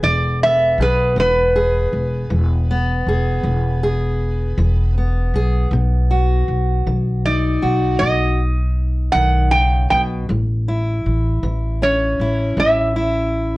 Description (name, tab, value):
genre	acoustic country blues, solo or duo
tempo	53 BPM (dotted quarters)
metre	12/8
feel	straight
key	E major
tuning	A4 = 442 Hz
part	metal-body resonator slide guitar	melody	0.0-13.6 s	B4 to G5	-17 LUFS	right 1 dB	none
part	fingerpicked steel-string acoustic guitar	accompaniment	0.0-13.6 s	E2 to G#4	-23 LUFS	left 1 dB	none
part	upright bass	bass	0.0-13.6 s	E1 to B1	-18 LUFS	equal	tube saturation
room	light reverb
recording	worn, warbling old tape, cassette tape, warbly pitch drift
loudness	-15 LUFS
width	side -20 dB against mid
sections	0.0-13.6 A section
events	none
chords	0.0 E; 5.7 B; 10.3 A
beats	0.04 | 1.18 2.31 3.45 4.59 | 5.73 6.87 8.01 9.15 | 10.29 11.43 12.57